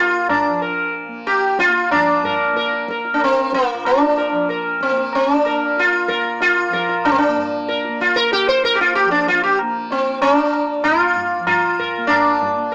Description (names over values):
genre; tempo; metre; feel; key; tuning
indian classical, Hindustani; 94 BPM; 4/4; straight; Bb raga bhupali; A4 = 439 Hz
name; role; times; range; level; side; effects
sitar; melody; 0.0-12.7 s; Bb3 to C5; -18 LUFS; equal; cassette tape
tanpura; drone; 0.0-12.7 s; Bb2 to Bb3; -34 LUFS; equal; cassette tape
tabla; percussion; 0.3-12.7 s; none; -27 LUFS; equal; none
room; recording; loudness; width
moderate spring reverb, RT60 1.3 s; home recording on cassette, small speaker sound; -17 LUFS; mono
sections
0.0-1.9 A section; 1.9-12.7 B section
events
speeding up 0.0-12.7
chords
none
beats
0.63 1.28 | 1.92 2.57 3.21 3.85 | 4.49 5.13 5.77 6.41 | 7.05 7.68 8.32 8.95 | 9.58 10.21 10.84 11.47 | 12.10 12.73